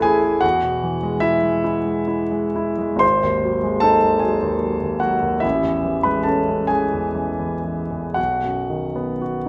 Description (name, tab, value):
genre	classical, romantic nocturne for solo piano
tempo	38-53 BPM (dotted quarters)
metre	12/8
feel	rubato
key	E major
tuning	A4 = 442 Hz
part	warm concert grand piano	solo	0.0-9.5 s	G#1 to C6	-20 LUFS	equal	none
room	wet recital hall reverb, RT60 1.4 s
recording	none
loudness	-20 LUFS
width	mono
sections	0.0-9.5 A section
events	none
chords	0.4 E; 3.0 G#7; 5.4 Amaj7; 8.2 B